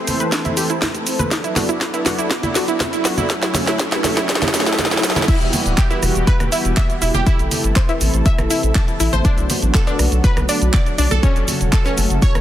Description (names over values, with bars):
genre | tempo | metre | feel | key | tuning
progressive house | 121 BPM | 4/4 | straight | E minor | A4 = 439 Hz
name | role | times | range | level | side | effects
filtered supersaw swell | sustained chords | 0.0-12.4 s | C3 to D5 | -24 LUFS | equal | sidechain pumping
riser | sound effects | 0.9-5.3 s | none | -30 LUFS | right 1 dB | none
house drum kit | drums | 0.1-12.4 s | crash cymbal, handclaps, hi-hat, rim click, shaker, snare drum | -21 LUFS | equal | soft clipping on snare
congas and cowbell | percussion | 0.1-12.4 s | none | -27 LUFS | right 1 dB | sidechain pumping on perc
analog pluck | arpeggios | 0.2-12.3 s | C#4 to A6 | -22 LUFS | right 1 dB | chorus, sidechain pumping, tape echo
electronic kick drum | drums | 0.3-12.3 s | none | -16 LUFS | equal | high-pass filter on kick, high-pass filter on room
saturated sub bass | bass | 5.4-12.4 s | D1 to B1 | -19 LUFS | equal | sidechain pumping
room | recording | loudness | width
light reverb | dense, heavily limited modern master | -15 LUFS | side -12 dB against mid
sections
0.0-5.3 A section; 5.3-12.4 B section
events
build-up 0.0-5.3; drum fill 0.0-5.3; drop 5.3-12.4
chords
0.0 Am; 1.3 Bm7; 3.3 F#m; 5.3 Emadd9; 7.3 Am; 9.2 Bm7; 11.2 F#m